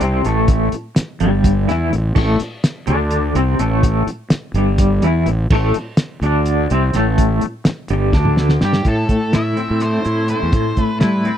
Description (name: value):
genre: psychedelic rock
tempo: 251 BPM (eighths)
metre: 7/8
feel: straight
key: A minor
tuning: A4 = 440 Hz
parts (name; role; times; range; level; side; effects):
- twangy electric guitar; riff; 0.0-11.4 s; G2 to G4; -18 LUFS; equal; tremolo, double-tracked left and right
- fuzz fingered electric bass; bass; 0.0-11.2 s; G1 to G3; -18 LUFS; equal; overdrive
- cloth-damped thuddy drum kit; drums; 0.0-11.4 s; crash cymbal, hi-hat, kick drum, snare drum, toms; -17 LUFS; equal; none
- octave-fuzz lead guitar; melody; 8.6-11.4 s; G4 to E5; -24 LUFS; equal; distortion, tape echo
room: small room ambience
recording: dry, close 1970s-style studio recording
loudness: -14 LUFS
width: side -10 dB against mid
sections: 0.0-8.9 A section; 8.9-11.4 B section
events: drum fill 8.1-8.9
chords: 0.0 Am